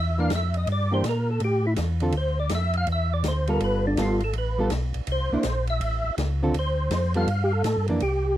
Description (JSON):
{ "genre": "soul jazz organ trio", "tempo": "164 BPM", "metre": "4/4", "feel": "swing 65% on 8ths", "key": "unclear", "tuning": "A4 = 441 Hz", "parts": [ { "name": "percussive tonewheel organ", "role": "melody", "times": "0.0-8.4 s", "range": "D4 to F5", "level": "-27 LUFS", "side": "right 1 dB", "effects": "slow rotary speaker, chorus vibrato" }, { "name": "mellow tonewheel organ", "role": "bass", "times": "0.0-8.4 s", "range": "G1 to Bb2", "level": "-25 LUFS", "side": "equal", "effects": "slow rotary speaker" }, { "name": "hollow-body jazz guitar", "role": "accompaniment", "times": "0.2-8.0 s", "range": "D3 to A4", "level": "-24 LUFS", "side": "right 1 dB", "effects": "none" }, { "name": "open jazz drum kit", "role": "drums", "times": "0.3-8.1 s", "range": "hi-hat, ride cymbal, snare drum", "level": "-34 LUFS", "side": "equal", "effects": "none" } ], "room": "little or no reverb", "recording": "dry, close 1970s-style studio recording", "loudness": "-22 LUFS", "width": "side -13 dB against mid", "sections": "0.0-8.0 A section", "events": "tonewheel organ solo 0.0-8.0", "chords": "0.0 C9 (rootless); 0.7 Em7b5; 1.4 A5; 2.1 Dm; 3.6 G9; 5.1 C9; 5.8 A; 6.5 Dm7; 7.3 Gsus2", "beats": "0.31 | 0.68 1.04 1.41 1.78 | 2.14 2.51 2.88 3.24 | 3.61 3.98 4.34 4.71 | 5.08 5.45 5.81 6.18 | 6.54 6.91 7.28 7.65 | 8.01" }